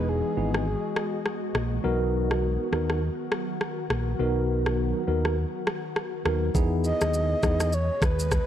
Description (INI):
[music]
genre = afrobeats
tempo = 102 BPM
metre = 4/4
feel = swing 58% on 16ths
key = unclear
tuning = A4 = 440 Hz
[part]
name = breathy flute-like synth lead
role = melody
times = 0.0-1.6, 6.9-8.5 s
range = G#4 to D#5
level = -30 LUFS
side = equal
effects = chorus, analog delay
[part]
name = tine electric piano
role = accompaniment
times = 0.0-7.7 s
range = B3 to A#4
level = -28 LUFS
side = equal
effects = medium stereo tremolo
[part]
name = glassy FM pad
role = sustained chords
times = 0.0-8.5 s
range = B2 to D#5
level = -33 LUFS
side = left 1 dB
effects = ensemble chorus, built-in reverb
[part]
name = fingered electric bass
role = bass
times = 0.0-8.4 s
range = E1 to E2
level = -27 LUFS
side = equal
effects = none
[part]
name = afro-pop drum kit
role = drums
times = 0.5-8.5 s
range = kick drum, rim click, shaker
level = -28 LUFS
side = equal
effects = none
[sound]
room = digital ambience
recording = dry, gritty hardware recording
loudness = -24 LUFS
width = side -10 dB against mid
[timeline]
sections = 0.0-6.5 A section; 6.5-8.5 B section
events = none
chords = 0.0 Emaj7; 1.8 Bmaj7; 6.5 Emaj7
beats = 0.08 0.67 1.25 | 1.84 2.43 3.02 3.61 | 4.20 4.78 5.37 5.96 | 6.55 7.14 7.72 8.31